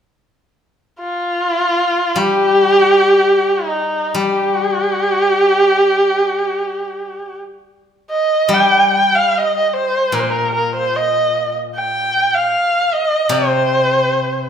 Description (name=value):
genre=chinese traditional, Chinese chamber ensemble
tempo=free time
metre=none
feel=none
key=G jue mode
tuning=A4 = 441 Hz
part: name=dark erhu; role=melody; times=1.0-14.5 s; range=Eb4 to G5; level=-14 LUFS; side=right 1 dB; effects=none
part: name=steel-string zither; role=accompaniment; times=2.2-14.5 s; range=Bb2 to G3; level=-21 LUFS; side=left 5 dB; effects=none
room=wet recital hall reverb, RT60 1.3 s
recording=minimal, uncompressed stereo recording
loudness=-13 LUFS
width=side -8 dB against mid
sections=0.5-8.5 A section; 8.5-14.5 B section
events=none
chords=none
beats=free time